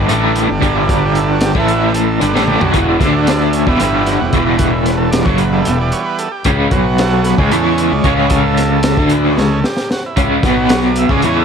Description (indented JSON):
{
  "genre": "psychedelic rock",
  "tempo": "226 BPM (eighths)",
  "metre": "7/8",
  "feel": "straight",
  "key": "E dorian",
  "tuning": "A4 = 444 Hz",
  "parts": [
    { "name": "overdriven combo organ", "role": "sustained chords", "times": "0.0-11.4 s", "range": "C#3 to E5", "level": "-18 LUFS", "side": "right 4 dB", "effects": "none" },
    { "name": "crunchy overdriven guitar", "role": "riff", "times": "0.0-11.4 s", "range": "E2 to E4", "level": "-14 LUFS", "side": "equal", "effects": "tremolo" },
    { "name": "fuzz fingered electric bass", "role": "bass", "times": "0.0-11.4 s", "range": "E1 to E2", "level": "-19 LUFS", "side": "equal", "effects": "overdrive" },
    { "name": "crunchy breakbeat drum kit", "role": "drums", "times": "0.1-11.3 s", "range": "hi-hat, kick drum, snare drum, toms", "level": "-18 LUFS", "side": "equal", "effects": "none" }
  ],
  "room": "little or no reverb",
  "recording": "none",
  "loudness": "-11 LUFS",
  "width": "side -6 dB against mid",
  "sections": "0.0-11.4 A section",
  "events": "transistor combo organ solo 0.0-11.4; drum fill 2.4-2.8, 9.4-10.2",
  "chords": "0.0 G5; 1.6 A5; 2.2 G5; 2.8 E5; 3.0 D5; 3.7 Em; 6.5 C#5; 6.7 B5; 7.4 C#5; 10.4 B5",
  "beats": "0.10 0.37 0.63 | 0.90 1.16 1.43 1.69 1.96 2.22 2.49 | 2.75 3.02 3.28 3.55 3.81 4.08 4.34 | 4.61 4.88 5.14 5.41 5.67 5.93 6.20 | 6.46 6.73 7.00 7.26 7.53 7.79 8.05 | 8.32 8.58 8.85 9.11 9.38 9.64 9.91 | 10.17 10.44 10.70 10.97 11.23"
}